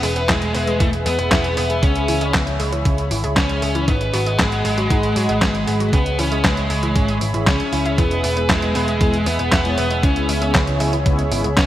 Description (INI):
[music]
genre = italo disco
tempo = 117 BPM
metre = 4/4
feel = straight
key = unclear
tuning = A4 = 444 Hz
[part]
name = biting lead guitar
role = melody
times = 0.0-11.7 s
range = G#3 to C#5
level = -22 LUFS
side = left 1 dB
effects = overdrive, digital delay
[part]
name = warm analog pad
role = sustained chords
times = 0.0-11.7 s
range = G#4 to B5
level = -25 LUFS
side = right 1 dB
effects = chorus
[part]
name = analog pluck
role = arpeggios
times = 0.0-11.7 s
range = C#3 to E4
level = -28 LUFS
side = right 1 dB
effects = chorus, digital delay
[part]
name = picked electric bass with an envelope filter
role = bass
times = 0.0-11.7 s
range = E1 to G#2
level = -22 LUFS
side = equal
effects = none
[part]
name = detuned 8-bit digital drum machine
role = drums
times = 0.0-11.7 s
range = handclaps, hi-hat, snare drum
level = -22 LUFS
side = equal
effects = small room reverb
[part]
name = electronic kick drum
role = drums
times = 0.3-11.7 s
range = none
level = -20 LUFS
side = equal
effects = small room reverb
[part]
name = mellow synth brass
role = stabs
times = 8.0-11.5 s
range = C#3 to C#5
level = -25 LUFS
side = left 2 dB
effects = chorus
[sound]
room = moderate lush hall reverb, RT60 2.3 s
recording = bright 1980s-style digital production, vinyl crackle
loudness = -16 LUFS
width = side -13 dB against mid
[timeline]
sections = 0.0-11.7 A section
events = none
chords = 0.0 E; 1.8 C#m7; 3.9 G#m7; 5.9 C#m7; 8.0 E; 10.0 C#m7